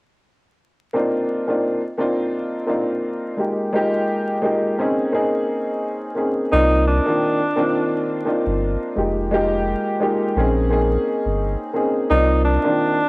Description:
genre	hip hop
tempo	86 BPM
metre	4/4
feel	swing 56% on 16ths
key	C minor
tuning	A4 = 440 Hz
part	dark upright piano	accompaniment	0.9-13.0 s	Eb3 to D5	-19 LUFS	equal	cassette tape, high-pass filter, low-pass filter
part	breathy tenor saxophone	melody	6.5-13.1 s	D4 to Eb4	-19 LUFS	equal	high-pass filter, low-pass filter, cassette tape, tape echo
part	soft dub sub bass	bass	6.5-12.6 s	F1 to C2	-20 LUFS	equal	none
room	wet spring reverb, RT60 1.6 s, small room ambience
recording	home recording on cassette, vinyl crackle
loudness	-18 LUFS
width	side -27 dB against mid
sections	0.9-6.5 A section; 6.5-13.1 B section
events	none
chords	0.9 Cm11; 3.4 Fm11; 4.8 Bbm11; 6.5 Cm11; 9.0 Fm11; 10.4 Bbm11; 12.1 Cm11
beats	| 0.94 1.64 2.33 3.03 | 3.73 4.43 5.12 5.82 | 6.52 7.22 7.92 8.61 | 9.31 10.01 10.71 11.40 | 12.10 12.80

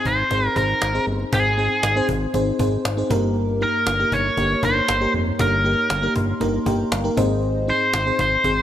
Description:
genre	1980s-style pop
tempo	118 BPM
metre	4/4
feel	straight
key	Ab major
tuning	A4 = 439 Hz
part	biting lead guitar	melody	0.0-8.6 s	Ab4 to Db5	-20 LUFS	equal	overdrive
part	FM electric piano with soft pad layer	accompaniment	0.0-8.6 s	G2 to C6	-23 LUFS	left 1 dB	chorus
part	fat analog bass	bass	0.1-8.6 s	F1 to Ab1	-24 LUFS	equal	none
part	cajon	drums	0.1-8.6 s	none	-28 LUFS	equal	none
room	moderate plate reverb, RT60 2.0 s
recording	bright 1980s-style digital production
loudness	-18 LUFS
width	side -11 dB against mid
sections	0.0-8.6 A section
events	FM electric piano fill 5.9-7.4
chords	0.0 Ab; 3.1 Eb/G; 7.2 Ab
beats	0.31 0.82 | 1.33 1.83 2.34 2.85 | 3.36 3.87 4.38 4.89 | 5.39 5.90 6.41 6.92 | 7.43 7.94 8.45

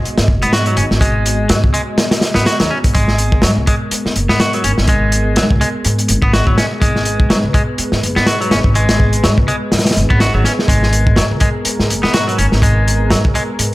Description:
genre	breakbeat, breaks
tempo	124 BPM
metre	4/4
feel	swing 57% on 16ths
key	G# minor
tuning	A4 = 441 Hz
part	dark analog pad	sustained chords	0.0-13.7 s	G#3 to D#5	-23 LUFS	equal	chorus, vintage 12-bit sampler grit, sidechain pumping
part	upright bass	bass	0.1-13.7 s	F#1 to G#2	-16 LUFS	equal	none
part	crunchy breakbeat drum kit	drums	0.1-13.7 s	hi-hat, kick drum, snare drum	-14 LUFS	equal	none
part	semi-hollow electric guitar	riff	0.4-13.4 s	F#3 to F#4	-19 LUFS	equal	tube saturation, spring reverb, tape echo
room	studio ambience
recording	none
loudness	-11 LUFS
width	side -18 dB against mid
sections	0.0-13.7 A section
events	none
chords	0.0 G#m9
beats	0.05 0.53 | 1.01 1.50 1.98 2.46 | 2.95 3.43 3.92 4.40 | 4.88 5.37 5.85 6.34 | 6.82 7.30 7.79 8.27 | 8.76 9.24 9.72 10.21 | 10.69 11.18 11.66 12.14 | 12.63 13.11 13.59

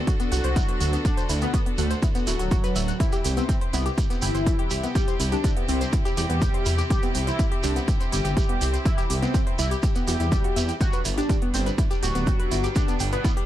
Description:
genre	melodic techno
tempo	123 BPM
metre	4/4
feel	straight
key	unclear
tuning	A4 = 440 Hz
part	rich chamber string section	sustained chords	0.0-13.5 s	C3 to A4	-33 LUFS	right 1 dB	sidechain pumping
part	woody wave-folded pluck	arpeggios	0.0-13.5 s	B3 to G5	-32 LUFS	left 2 dB	analog chorus, sidechain pumping, ping-pong delay
part	electronic hi-hat	drums	0.1-13.5 s	none	-37 LUFS	right 3 dB	none
part	electronic kick drum	drums	0.1-13.3 s	none	-23 LUFS	equal	none
part	shekere	percussion	0.1-13.3 s	none	-35 LUFS	right 5 dB	none
part	fat analog lead	melody	0.3-13.3 s	F#3 to G4	-30 LUFS	left 1 dB	analog chorus, sidechain pumping, tape echo
part	dark detuned saw bass	bass	0.3-13.2 s	D1 to E2	-25 LUFS	equal	sidechain pumping
room	little or no reverb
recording	none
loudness	-21 LUFS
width	side -12 dB against mid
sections	0.0-13.5 A section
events	none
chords	0.0 D; 3.0 C; 10.8 G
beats	0.07 0.56 | 1.05 1.54 2.03 2.51 | 3.00 3.49 3.98 4.46 | 4.95 5.44 5.93 6.42 | 6.90 7.39 7.88 8.37 | 8.86 9.34 9.83 10.32 | 10.81 11.29 11.78 12.27 | 12.76 13.24

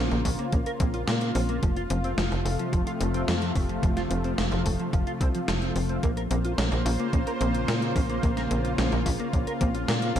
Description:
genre	synthwave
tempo	109 BPM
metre	4/4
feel	straight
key	Bb harmonic minor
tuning	A4 = 441 Hz
part	lush unison pad	sustained chords	0.0-10.2 s	C3 to C5	-30 LUFS	equal	chorus, sidechain pumping
part	soft round pluck	arpeggios	0.0-10.2 s	A3 to A4	-35 LUFS	left 2 dB	chorus, cassette tape, ping-pong delay
part	tight sequencer bass	bass	0.0-10.2 s	F1 to Bb2	-28 LUFS	equal	sidechain pumping
part	mellow electric guitar	riff	0.1-10.2 s	F3 to Bb4	-34 LUFS	right 1 dB	analog chorus, vintage 12-bit sampler grit, ping-pong delay
part	gated 80s digital drum machine	drums	0.1-10.2 s	hi-hat, snare drum	-33 LUFS	equal	gated reverb, gated reverb snare, overdrive
part	electronic kick drum	drums	0.3-9.7 s	none	-27 LUFS	equal	overdrive
room	light reverb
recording	dark, warm production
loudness	-24 LUFS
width	side -10 dB against mid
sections	0.0-10.2 A section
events	none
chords	0.0 Bbmadd9; 1.6 F; 6.0 Bbmadd9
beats	0.53 1.08 | 1.63 2.18 2.73 3.28 | 3.83 4.38 4.93 5.48 | 6.03 6.58 7.13 7.68 | 8.23 8.79 9.34 9.89

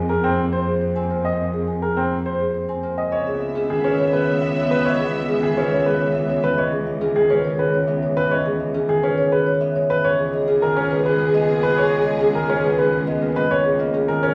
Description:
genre	classical, minimalist pattern music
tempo	104 BPM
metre	3/4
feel	straight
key	C# dorian from 3.1 s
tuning	A4 = 442 Hz
part	marimba with soft mallets	melody	0.0-14.3 s	Ab4 to Bb5	-24 LUFS	equal	none
part	concert harp	accompaniment	0.0-14.3 s	D#3 to C#4	-29 LUFS	equal	none
part	rich cello	bass	0.0-14.3 s	C#2 to F2	-29 LUFS	equal	none
part	clear baby grand piano	arpeggios	0.1-14.3 s	C4 to Eb5	-25 LUFS	equal	none
part	warm symphonic string section	sustained chords	3.1-6.4, 10.0-13.3 s	G#3 to E5	-28 LUFS	equal	none
room	wet recital hall reverb, RT60 1.4 s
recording	recorded in a church or concert hall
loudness	-20 LUFS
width	mono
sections	0.0-3.1 A section; 3.1-14.3 B section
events	none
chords	0.0 Absus2/F; 3.1 C#m7; 10.0 G#madd9/C#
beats	0.23 0.81 | 1.39 1.97 2.54 | 3.12 3.70 4.27 | 4.85 5.43 6.00 | 6.58 7.16 7.74 | 8.31 8.89 9.47 | 10.04 10.62 11.20 | 11.77 12.35 12.93 | 13.50 14.08

